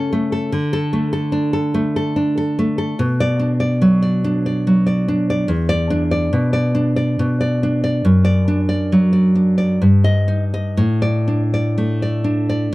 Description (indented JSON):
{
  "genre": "romantic piece for solo classical guitar",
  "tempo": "59-75 BPM",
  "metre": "3/4",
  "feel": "rubato",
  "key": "D major",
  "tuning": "A4 = 442 Hz",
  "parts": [
    { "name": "nylon-string guitar", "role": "solo", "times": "0.0-12.7 s", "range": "E2 to Eb5", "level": "-15 LUFS", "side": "equal", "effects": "none" }
  ],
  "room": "light reverb",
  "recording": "dry, close 1970s-style studio recording",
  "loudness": "-15 LUFS",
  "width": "side -18 dB against mid",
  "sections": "0.0-12.7 A section",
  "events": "none",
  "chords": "0.0 A/C#; 0.5 D5; 3.0 Bm; 5.5 E5; 8.1 D/F#; 9.8 Eb/G; 10.8 D5/A"
}